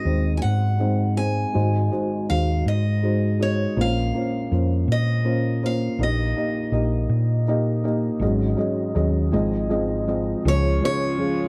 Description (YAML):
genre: acoustic folk-pop ballad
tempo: 54 BPM (dotted quarters)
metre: 6/8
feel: straight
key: unclear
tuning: A4 = 440 Hz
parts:
  - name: picked steel-string acoustic guitar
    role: melody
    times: 0.0-11.5 s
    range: Db5 to Ab5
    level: -31 LUFS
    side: equal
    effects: none
  - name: felt-muted upright piano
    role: accompaniment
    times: 0.0-11.5 s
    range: Ab1 to Eb5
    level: -26 LUFS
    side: equal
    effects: none
  - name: hollow-body short-scale fingered electric bass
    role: bass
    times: 0.1-10.8 s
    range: Ab1 to Bb2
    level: -24 LUFS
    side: equal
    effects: none
  - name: warm chamber string section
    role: sustained chords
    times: 10.4-11.5 s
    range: Ab3 to F4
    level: -34 LUFS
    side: equal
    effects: none
room: small room reverb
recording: dry, close 1970s-style studio recording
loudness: -22 LUFS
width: mono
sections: 0.0-10.5 A section; 10.5-11.5 B section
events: none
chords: 0.0 Ab7; 3.8 Bbmadd9; 6.0 Eb/Bb; 8.2 Ab7sus4; 9.3 Ab6; 10.5 Db